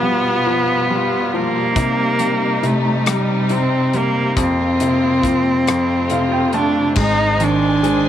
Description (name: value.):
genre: six-eight pop ballad.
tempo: 46 BPM (dotted quarters).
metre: 6/8.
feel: straight.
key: unclear.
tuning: A4 = 439 Hz.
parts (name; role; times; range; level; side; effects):
warm cello; melody; 0.0-8.1 s; G3 to Eb4; -17 LUFS; right 1 dB; none.
clear baby grand piano; accompaniment; 0.0-8.1 s; F2 to A5; -21 LUFS; left 1 dB; none.
warm studio string section; sustained chords; 0.0-8.1 s; B2 to Ab5; -23 LUFS; left 1 dB; none.
natural country drum kit; drums; 1.8-8.0 s; crash cymbal, hi-hat, kick drum, rim click; -24 LUFS; left 2 dB; none.
upright bass; bass; 7.0-8.1 s; Ab1; -22 LUFS; right 1 dB; none.
room: moderate spring reverb, RT60 2.4 s.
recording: 1960s-style stereo.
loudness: -15 LUFS.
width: side -10 dB against mid.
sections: 0.0-7.0 A section; 7.0-8.1 B section.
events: grand piano fill 5.7-7.0.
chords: 0.0 G7/B; 1.8 Cm; 4.4 Fsus4; 5.7 F; 7.0 Ab.